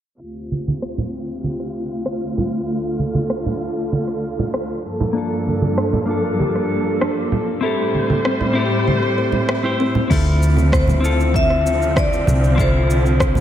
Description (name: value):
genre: sunset chillout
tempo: 97 BPM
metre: 4/4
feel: straight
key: D minor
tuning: A4 = 440 Hz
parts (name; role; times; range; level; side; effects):
- dark studio string section; sustained chords; 0.2-13.4 s; D2 to C5; -22 LUFS; equal; low-pass filter
- congas; percussion; 0.5-13.4 s; none; -23 LUFS; right 2 dB; none
- deep house drum kit; drums; 0.8-13.4 s; crash cymbal, rim click, shaker; -26 LUFS; equal; overdrive
- clean electric guitar; accompaniment; 5.1-13.4 s; Bb3 to C5; -22 LUFS; moving between left 4 dB and right 5 dB; auto-pan, low-pass filter, analog delay
- kalimba; arpeggios; 5.5-10.1 s; C4 to C5; -26 LUFS; left 1 dB; analog delay
- hollow-body short-scale fingered electric bass; bass; 10.1-13.4 s; C2 to D2; -17 LUFS; equal; none
- electronic kick drum; drums; 10.1-13.3 s; none; -20 LUFS; equal; overdrive
- vibraphone with hard mallets; melody; 10.7-13.4 s; C5 to E5; -21 LUFS; left 2 dB; analog delay
room: moderate plate reverb, RT60 1.8 s, studio ambience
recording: dreamy mix soaked in reverb, low-pass filter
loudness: -16 LUFS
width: side -10 dB against mid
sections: 0.2-10.1 A section; 10.1-13.4 B section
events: filter sweep on string section 0.2-10.1; filter sweep 0.2-10.1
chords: 0.2 Dm7; 4.8 Gm9; 7.6 Am7; 10.1 Dm7